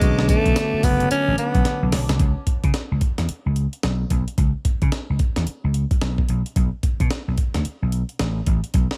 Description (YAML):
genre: R&B, new jack swing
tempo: 110 BPM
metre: 4/4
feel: swing 62% on 16ths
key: unclear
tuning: A4 = 439 Hz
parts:
  - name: raspy alto saxophone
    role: melody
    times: 0.0-1.9 s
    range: G#3 to C#4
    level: -24 LUFS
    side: equal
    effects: none
  - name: barky tine electric piano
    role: accompaniment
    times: 0.0-2.2 s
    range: D3 to F#4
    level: -28 LUFS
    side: equal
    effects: phaser
  - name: sweeping resonant pad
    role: sustained chords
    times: 0.0-2.2 s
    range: C#4 to D6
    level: -38 LUFS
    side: equal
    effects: chorus
  - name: vintage slap bass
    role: bass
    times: 0.0-8.9 s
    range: F#1 to C#3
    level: -24 LUFS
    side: equal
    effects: none
  - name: breakbeat sampler-style drum kit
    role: drums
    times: 0.0-9.0 s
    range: hi-hat, kick drum, snare drum, tambourine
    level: -24 LUFS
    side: equal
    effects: none
room: digital ambience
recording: none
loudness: -21 LUFS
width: mono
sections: 0.0-2.2 A section; 2.2-9.0 B section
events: drum fill 1.7-2.2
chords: 0.0 Bm9; 2.2 C#7(no3); 6.6 B7(no3)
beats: | 0.01 0.56 1.11 1.65 | 2.20 2.74 3.29 3.83 | 4.38 4.92 5.47 6.01 | 6.56 7.11 7.65 8.20 | 8.74